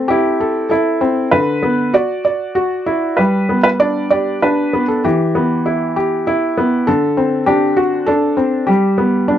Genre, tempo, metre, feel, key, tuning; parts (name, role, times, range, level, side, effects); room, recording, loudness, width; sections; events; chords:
children's music, lullaby; 98 BPM; 3/4; rubato; G major; A4 = 439 Hz
felt-muted upright piano; solo; 0.0-9.4 s; D3 to D5; -13 LUFS; equal
light reverb; dry, close 1970s-style studio recording; -13 LUFS; side -10 dB against mid
0.0-9.4 A section
0.0 Am; 1.3 Bm/D; 1.9 Dadd9; 3.2 G; 5.0 Em; 6.9 D7; 8.7 G